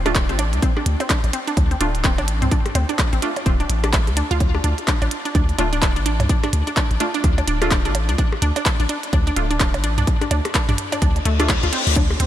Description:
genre	minimal techno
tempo	127 BPM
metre	4/4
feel	swing 60% on 16ths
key	D minor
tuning	A4 = 440 Hz
part	punchy sub bass	bass	0.0-12.3 s	D1 to D2	-21 LUFS	equal	sidechain pumping
part	resonant blip pluck	riff	0.1-12.2 s	A3 to F4	-25 LUFS	equal	chorus, sidechain pumping, ping-pong delay
part	wavetable chord stab	stabs	0.1-11.5 s	A3 to F4	-29 LUFS	right 2 dB	lush chorus, analog delay
part	minimal click drum kit	drums	0.1-12.3 s	handclaps, hi-hat	-26 LUFS	equal	none
part	electronic percussion blips and toms	percussion	0.1-12.2 s	none	-29 LUFS	equal	overdrive, analog delay
part	electronic kick drum	drums	0.2-12.1 s	none	-19 LUFS	equal	none
part	reverse cymbal	sound effects	11.2-12.0 s	none	-23 LUFS	left 5 dB	none
room	light reverb, digital ambience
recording	none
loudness	-17 LUFS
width	side -12 dB against mid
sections	0.0-12.3 A section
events	reverse cymbal 11.2-12.0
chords	0.0 D5

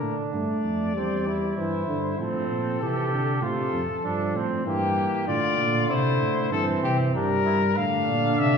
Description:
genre	classical, imitative canzona for brass ensemble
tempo	97 BPM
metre	4/4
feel	straight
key	unclear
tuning	A4 = 440 Hz
part	mellow trumpet	melody	0.0-8.6 s	G4 to F5	-27 LUFS	left 5 dB	none
part	warm flugelhorn	second line	0.0-8.6 s	Bb3 to G4	-30 LUFS	right 3 dB	none
part	mellow euphonium	accompaniment	0.0-8.6 s	C3 to A3	-28 LUFS	right 1 dB	none
part	dark tuba	bass	0.0-8.6 s	E2 to C3	-28 LUFS	right 2 dB	none
room	wet recital hall reverb, RT60 1.5 s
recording	heard from further back in the room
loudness	-22 LUFS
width	side -6 dB against mid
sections	0.0-8.6 A section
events	none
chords	0.0 G5; 1.0 C/E; 2.2 F/A; 3.4 F; 4.7 Gm; 5.9 C; 7.1 Edim/G

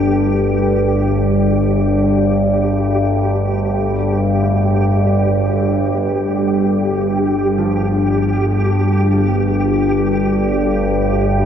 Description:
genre	dark ambient drone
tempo	free time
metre	none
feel	none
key	unclear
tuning	A4 = 440 Hz
part	deep dark ambient pad	sustained chords	0.0-11.5 s	G3 to G5	-19 LUFS	equal	chorus, built-in reverb
part	overtone-sweeping drone	drone	0.0-11.5 s	G1 to G2	-16 LUFS	equal	chorus, built-in reverb, phaser
part	flickering grainy texture	texture	0.0-11.5 s	G4	-23 LUFS	equal	built-in reverb
part	warm grand piano	arpeggios	4.4-11.5 s	A2 to A3	-32 LUFS	equal	none
room	wet huge ambient reverb, RT60 8.4 s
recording	dark, warm production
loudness	-14 LUFS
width	side -8 dB against mid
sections	0.0-3.7 A section; 3.7-11.5 B section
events	none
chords	0.0 Gsus2

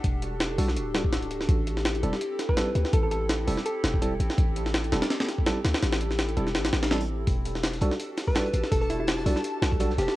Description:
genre	drum and bass, jungle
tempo	166 BPM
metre	4/4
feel	swing 55% on 16ths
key	unclear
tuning	A4 = 440 Hz
part	warbly tape-like pad	sustained chords	0.0-10.1 s	C4 to A4	-33 LUFS	left 1 dB	chorus, built-in reverb, phaser, cassette tape
part	warm 808-style bass	bass	0.0-10.1 s	D1 to D2	-28 LUFS	equal	none
part	jungle sampler-style drum kit	drums	0.0-10.2 s	hi-hat, kick drum, snare drum	-27 LUFS	equal	studio reverb, cassette tape
part	tine electric piano	stabs	0.6-9.9 s	G3 to A4	-32 LUFS	right 2 dB	vintage 12-bit sampler grit, cassette tape, dub echo
part	thumb-piano-like synth pluck	melody	2.5-4.2, 8.3-10.2 s	E4 to B4	-31 LUFS	equal	chorus, cassette tape, dub echo
part	crunchy breakbeat drum kit	drums	7.3-10.1 s	hi-hat, snare drum	-41 LUFS	left 1 dB	none
part	backwards swelling texture	texture	8.0-10.2 s	A5	-39 LUFS	left 2 dB	built-in reverb, cassette tape
room	light reverb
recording	home recording on cassette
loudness	-24 LUFS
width	side -16 dB against mid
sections	0.0-10.2 A section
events	kick drops out 6.5-7.3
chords	0.0 Em11; 1.5 Am7; 7.3 Em11

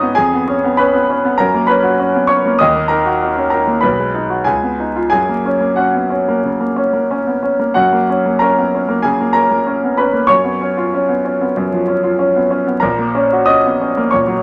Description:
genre	classical, virtuoso piano study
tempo	95 BPM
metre	4/4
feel	rubato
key	F# major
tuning	A4 = 441 Hz
part	clear grand piano	solo	0.0-14.4 s	A#1 to D#6	-15 LUFS	equal	none
room	moderate studio reverb, RT60 0.9 s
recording	vinyl crackle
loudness	-15 LUFS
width	mono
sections	0.0-7.8 A section; 7.8-14.4 A section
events	none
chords	0.1 C#7/E#; 1.4 F#; 2.6 D#m; 3.9 G#m7/B; 4.5 C#9; 5.1 F#; 10.3 C#7/F#; 12.8 F#/A#

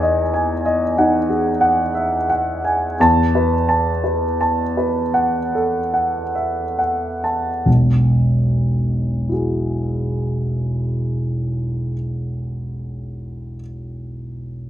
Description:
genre	classical, impressionist solo piano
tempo	34-49 BPM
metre	3/4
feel	rubato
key	E major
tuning	A4 = 440 Hz
part	clear grand piano	solo	0.0-14.7 s	E1 to A5	-17 LUFS	equal	none
room	moderate recital hall reverb, RT60 1.5 s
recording	close, detailed microphones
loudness	-17 LUFS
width	side -12 dB against mid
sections	0.0-7.7 A section; 7.7-12.6 B section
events	slowing down 0.0-7.7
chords	0.0 Emaj9; 3.0 F#m7/E; 7.7 Eadd9

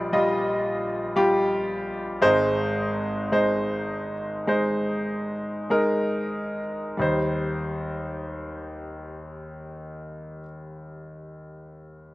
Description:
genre	folk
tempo	45-59 BPM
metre	4/4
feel	straight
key	Eb major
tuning	A4 = 440 Hz
part	bright concert grand piano	melody	0.0-12.1 s	Ab1 to Eb5	-24 LUFS	equal	none
room	little or no reverb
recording	recorded outdoors, with no room sound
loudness	-23 LUFS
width	side -18 dB against mid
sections	0.0-7.0 A section; 7.0-12.1 B section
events	slowing down 0.0-7.0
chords	0.0 Ebadd9/Bb; 2.2 Ab; 7.0 Eb6

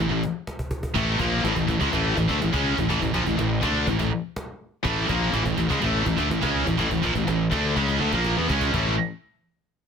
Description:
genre	heavy metal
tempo	124 BPM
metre	4/4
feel	straight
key	unclear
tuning	A4 = 439 Hz
part	distorted electric guitar	riff	0.0-8.9 s	A2 to E4	-28 LUFS	equal	overdrive
part	heavy high-gain guitar	riff	0.0-8.9 s	A2 to D4	-27 LUFS	left 12 dB	distortion
part	scooped high-gain guitar	riff	0.0-8.9 s	A2 to D4	-26 LUFS	right 11 dB	distortion
part	fuzz fingered electric bass	bass	0.0-9.0 s	A1 to E2	-27 LUFS	equal	overdrive
part	cajon	drums	0.0-8.8 s	none	-32 LUFS	equal	none
room	little or no reverb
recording	dense, heavily limited modern master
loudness	-21 LUFS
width	side -6 dB against mid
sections	0.0-8.7 A section; 8.7-9.9 B section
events	drum fill 0.0-1.0, 7.8-8.7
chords	0.0 A

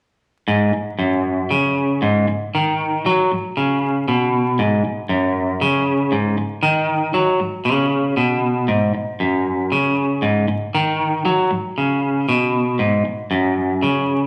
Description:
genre	rock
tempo	117 BPM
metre	4/4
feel	straight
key	unclear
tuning	A4 = 440 Hz
part	clean electric guitar	solo	0.5-14.3 s	Gb2 to Gb3	-19 LUFS	equal	none
room	wet large studio reverb, RT60 1.3 s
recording	vinyl crackle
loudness	-19 LUFS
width	mono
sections	0.5-14.3 A section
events	none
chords	none

